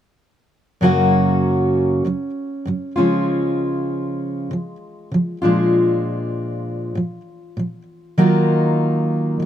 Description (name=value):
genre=pop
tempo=98 BPM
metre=4/4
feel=straight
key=F# major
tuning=A4 = 440 Hz
part: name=fingerpicked steel-string acoustic guitar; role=accompaniment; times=0.8-9.5 s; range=F#2 to F#4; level=-17 LUFS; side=equal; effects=none
room=little or no reverb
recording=close, detailed microphones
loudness=-17 LUFS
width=side -10 dB against mid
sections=0.8-9.5 A section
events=none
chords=0.8 F#; 3.0 C#; 5.4 A#7; 8.2 D#madd9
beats=| 0.82 1.44 2.05 2.67 | 3.28 3.90 4.51 5.12 | 5.74 6.35 6.96 7.57 | 8.19 8.80 9.41